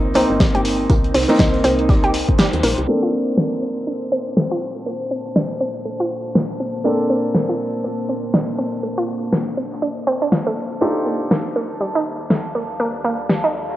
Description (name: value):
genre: deep house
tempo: 121 BPM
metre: 4/4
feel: swing 59% on 16ths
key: Bb major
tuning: A4 = 440 Hz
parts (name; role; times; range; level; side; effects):
- deep dark ambient pad; sustained chords; 0.0-13.8 s; Eb3 to C6; -27 LUFS; left 1 dB; chorus, built-in reverb, sidechain pumping, cassette tape
- felt-muted upright piano; stabs; 0.0-13.8 s; Bb3 to A4; -21 LUFS; equal; sidechain pumping, low-pass filter, cassette tape, analog delay
- woody FM bass; bass; 0.0-2.9 s; G1 to Eb2; -24 LUFS; equal; sidechain pumping
- unplugged drum kit; drums; 0.1-13.8 s; hi-hat, snare drum; -37 LUFS; left 2 dB; none
- analog pluck; arpeggios; 0.2-13.5 s; G3 to G4; -23 LUFS; right 1 dB; chorus, cassette tape, sidechain pumping, analog delay
- deep house drum kit; drums; 0.2-13.4 s; hi-hat, snare drum; -20 LUFS; equal; cassette tape
- electronic kick drum; drums; 0.4-2.4 s; none; -17 LUFS; equal; cassette tape
room: wet spring reverb, RT60 2.4 s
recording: home recording on cassette, low-pass filter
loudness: -17 LUFS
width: side -14 dB against mid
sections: 0.0-2.9 A section; 2.9-13.8 B section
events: kick drops out 2.4-2.9; band accent 2.4; filter sweep on felt piano 2.9-13.8; filter sweep on synth arpeggio sound 2.9-13.8; filter sweep 2.9-13.8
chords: 0.0 Cm7; 2.9 Bbmaj9; 10.8 Ebmaj9#11